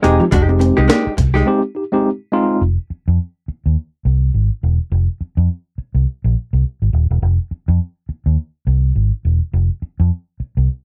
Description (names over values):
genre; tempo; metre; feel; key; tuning
funk; 104 BPM; 4/4; swing 60% on 16ths; F minor; A4 = 439 Hz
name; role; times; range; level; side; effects
hollow-body jazz guitar; accompaniment; 0.0-1.5 s; Ab3 to Ab4; -21 LUFS; equal; none
electric guitar at the edge of break-up; riff; 0.0-1.4 s; F3 to C4; -24 LUFS; equal; ensemble chorus
tine electric piano; stabs; 0.0-2.6 s; Ab3 to G4; -18 LUFS; equal; none
vintage muted fingered electric bass; bass; 0.0-10.7 s; Eb1 to F2; -17 LUFS; equal; none
breakbeat sampler-style drum kit; drums; 0.0-1.4 s; hi-hat, kick drum, snare drum; -20 LUFS; equal; none
room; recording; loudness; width
little or no reverb; dry, close 1970s-style studio recording; -17 LUFS; mono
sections
0.0-2.6 A section; 2.6-10.8 B section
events
break 1.5-2.6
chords
0.0 Fm9; 2.6 Fm7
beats
| 0.32 0.89 1.47 2.04 | 2.62 3.19 3.77 4.34 | 4.92 5.50 6.07 6.65 | 7.23 7.80 8.38 8.96 | 9.54 10.12